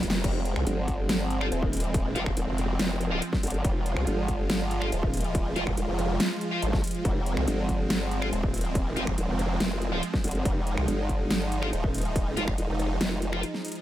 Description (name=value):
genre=heavy wobble dubstep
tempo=141 BPM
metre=4/4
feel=half-time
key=F minor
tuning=A4 = 439 Hz
part: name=supersaw chords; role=sustained chords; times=0.0-13.8 s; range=F3 to F4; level=-32 LUFS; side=right 2 dB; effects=sidechain pumping
part: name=formant-sweep wobble bass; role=bass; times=0.0-13.4 s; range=Eb1 to G1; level=-29 LUFS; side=equal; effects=chorus, overdrive
part: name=dubstep drum kit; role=drums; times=0.0-13.8 s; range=crash cymbal, finger snaps, hi-hat, snare drum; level=-31 LUFS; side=equal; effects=small room ambience
part: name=electronic kick drum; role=drums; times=0.0-12.6 s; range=none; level=-30 LUFS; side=equal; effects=distortion, small room ambience
part: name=formant-sweep wobble bass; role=bass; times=0.2-13.0 s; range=Eb1 to C2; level=-29 LUFS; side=equal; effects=chorus, overdrive
part: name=distorted electric guitar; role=stabs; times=1.4-13.4 s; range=F4 to F5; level=-35 LUFS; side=left 2 dB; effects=distortion, ping-pong delay
room=little or no reverb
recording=none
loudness=-25 LUFS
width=side -13 dB against mid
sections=0.2-13.8 A section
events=drum fill 0.0; band accent 0.1; drop 0.2-13.8; break 13.4-13.8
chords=0.2 Fm